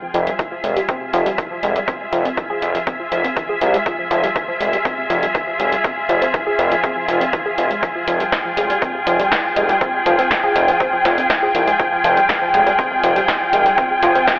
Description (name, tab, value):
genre	melodic techno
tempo	121 BPM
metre	4/4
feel	straight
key	F harmonic minor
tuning	A4 = 440 Hz
part	analog pluck	arpeggios	0.0-14.3 s	C3 to Ab4	-22 LUFS	equal	chorus, sidechain pumping, tape echo
part	dark studio string section	texture	0.0-14.4 s	F4 to G5	-18 LUFS	equal	sidechain pumping
part	fat analog bass	bass	0.1-14.2 s	F1 to C2	-19 LUFS	equal	sidechain pumping
part	punchy analog drum machine	drums	0.1-14.4 s	hi-hat, snare drum	-24 LUFS	equal	none
part	electronic kick drum	drums	0.4-14.4 s	none	-22 LUFS	equal	none
room	wet lush hall reverb, RT60 2.0 s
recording	dreamy mix soaked in reverb, telephone sound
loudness	-15 LUFS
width	side -21 dB against mid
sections	0.0-14.4 A section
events	fade-in on string section 0.0-14.4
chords	0.0 Fmadd9